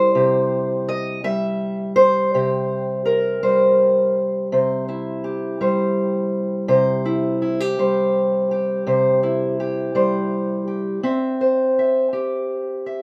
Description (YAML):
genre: acoustic country blues, solo or duo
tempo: 55 BPM (dotted quarters)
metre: 12/8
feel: straight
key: C mixolydian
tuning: A4 = 441 Hz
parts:
  - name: fingerpicked steel-string acoustic guitar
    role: solo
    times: 0.0-13.0 s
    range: C3 to E5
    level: -20 LUFS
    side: equal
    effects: none
room: light reverb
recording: none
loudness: -20 LUFS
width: mono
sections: 0.0-13.0 A section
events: none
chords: 0.0 C